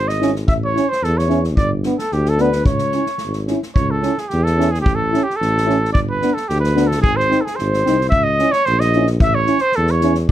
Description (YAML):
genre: balkan folk, Balkan brass band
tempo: 110 BPM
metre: 2/4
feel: swing 53% on 16ths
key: C# hungarian minor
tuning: A4 = 440 Hz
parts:
  - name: mellow trumpet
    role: melody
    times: 0.0-10.3 s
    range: G4 to E5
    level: -19 LUFS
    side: right 2 dB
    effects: none
  - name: mellow flugelhorn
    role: second line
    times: 0.0-3.4, 7.0-10.3 s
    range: G4 to E5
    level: -25 LUFS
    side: left 6 dB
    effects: none
  - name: mellow tuba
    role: bass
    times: 0.0-10.3 s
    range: G1 to E2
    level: -19 LUFS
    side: equal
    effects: none
  - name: unplugged drum kit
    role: percussion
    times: 0.1-10.3 s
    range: kick drum, snare drum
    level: -21 LUFS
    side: equal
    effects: none
  - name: mellow euphonium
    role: accompaniment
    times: 0.2-10.1 s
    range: D4 to E4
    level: -23 LUFS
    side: left 8 dB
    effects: none
  - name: warm trombone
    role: accompaniment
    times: 0.2-10.1 s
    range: B3 to C#4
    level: -21 LUFS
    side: right 5 dB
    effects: none
room: light reverb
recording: none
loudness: -15 LUFS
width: side -12 dB against mid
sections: 0.0-3.8 A section; 3.8-10.3 A section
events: none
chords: 0.5 A; 1.6 G; 2.7 C#m; 4.9 A; 5.9 G; 7.0 G#; 8.1 C#m; 9.2 A